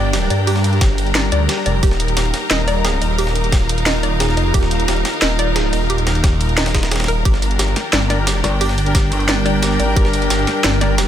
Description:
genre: dark technical drum and bass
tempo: 177 BPM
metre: 4/4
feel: straight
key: G minor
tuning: A4 = 438 Hz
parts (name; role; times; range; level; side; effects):
- deep dark ambient pad; sustained chords; 0.0-11.1 s; G3 to Bb4; -26 LUFS; right 2 dB; chorus, built-in reverb, sidechain pumping
- warbly dusty pluck; arpeggios; 0.0-11.0 s; G4 to Eb5; -25 LUFS; right 1 dB; chorus, sidechain pumping, digital delay
- phased detuned saw bass; bass; 0.0-11.1 s; Eb1 to G2; -18 LUFS; equal; phaser, overdrive
- clear studio string section; texture; 0.0-11.1 s; D4 to Bb5; -23 LUFS; left 2 dB; sidechain pumping
- breakbeat sampler-style drum kit; drums; 0.1-11.1 s; hi-hat, ride cymbal, snare drum; -26 LUFS; right 1 dB; high-pass filter on cymbals, high-pass filter on snare, high-pass filter on hats
- drum and bass drum kit; drums; 0.1-11.1 s; hi-hat, snare drum, tambourine; -20 LUFS; equal; none
- electronic kick drum; drums; 0.8-10.0 s; none; -15 LUFS; equal; none
- clear brass ensemble; stabs; 8.1-11.0 s; D4 to Bb4; -23 LUFS; left 2 dB; digital delay
- pulsing pluck wobble bass; bass; 8.4-9.8 s; G1; -18 LUFS; equal; chorus
room: light reverb, digital ambience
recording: none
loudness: -14 LUFS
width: side -10 dB against mid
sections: 0.0-11.1 A section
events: none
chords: 0.0 Gm; 1.8 Ebsus2; 7.3 Gm

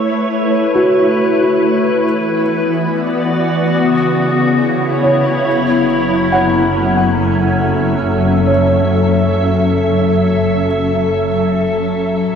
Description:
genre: ambient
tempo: 70 BPM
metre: 4/4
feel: straight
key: F# minor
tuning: A4 = 440 Hz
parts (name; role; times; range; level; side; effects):
- glassy FM pad; sustained chords; 0.0-12.4 s; C#3 to E5; -13 LUFS; left 1 dB; ensemble chorus, built-in reverb, shimmer reverb
- felt-muted upright piano; arpeggios; 0.0-12.3 s; F#4 to F#5; -19 LUFS; right 1 dB; ping-pong delay, shimmer reverb
- dark studio double bass section; bass; 5.5-12.4 s; F#1 to A1; -19 LUFS; right 1 dB; none
room: wet lush hall reverb, RT60 2.6 s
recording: dreamy mix soaked in reverb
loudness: -12 LUFS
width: side -7 dB against mid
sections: 0.0-5.5 A section; 5.5-12.4 B section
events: none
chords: 0.0 A; 2.0 E5; 3.8 C#m7; 5.5 F#m7

